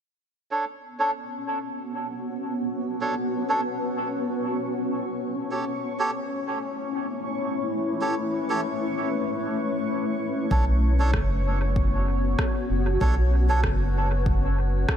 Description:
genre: ambient dub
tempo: 96 BPM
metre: 4/4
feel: swing 54% on 16ths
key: unclear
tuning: A4 = 440 Hz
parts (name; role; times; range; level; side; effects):
- granular cloud pad; sustained chords; 1.0-15.0 s; A3 to C#5; -29 LUFS; left 1 dB; built-in reverb
- melodica; stabs; 0.5-13.6 s; D4 to C#5; -30 LUFS; right 2 dB; low-pass filter, dub echo
- bubbling stepped-filter texture; texture; 1.0-15.0 s; C#4 to C#6; -33 LUFS; left 3 dB; chorus, built-in reverb
- round analog bass; bass; 10.5-14.9 s; F#1 to B1; -22 LUFS; equal; none
- electronic kick drum; drums; 10.5-15.0 s; none; -26 LUFS; equal; overdrive
- electronic rim click; drums; 11.1-15.0 s; none; -34 LUFS; right 1 dB; dub echo
room: light reverb, digital ambience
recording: none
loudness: -23 LUFS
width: side -9 dB against mid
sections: 0.5-15.0 A section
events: none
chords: 0.5 Bsus2; 5.5 A; 10.5 Bsus2

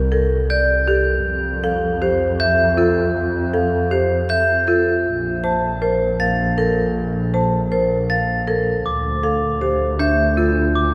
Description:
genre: classical, minimalist pattern music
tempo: 158 BPM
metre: 5/4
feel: straight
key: unclear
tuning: A4 = 440 Hz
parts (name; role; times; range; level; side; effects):
- clear symphonic double bass section; bass; 0.0-10.9 s; Bb1 to F2; -24 LUFS; equal; none
- vibraphone with medium hard mallets; melody; 0.1-10.6 s; A4 to A5; -24 LUFS; equal; none
- folk marimba with hard mallets; arpeggios; 0.1-10.6 s; D4 to C5; -25 LUFS; equal; none
- glockenspiel with soft plastic mallets; arpeggios; 0.5-10.9 s; D6 to A6; -25 LUFS; equal; none
room: wet cathedral reverb, RT60 4.9 s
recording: recorded in a church or concert hall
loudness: -19 LUFS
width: mono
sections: 0.0-10.9 A section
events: none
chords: 0.0 C5; 1.3 Fadd9; 5.1 Bb5; 8.9 N.C.

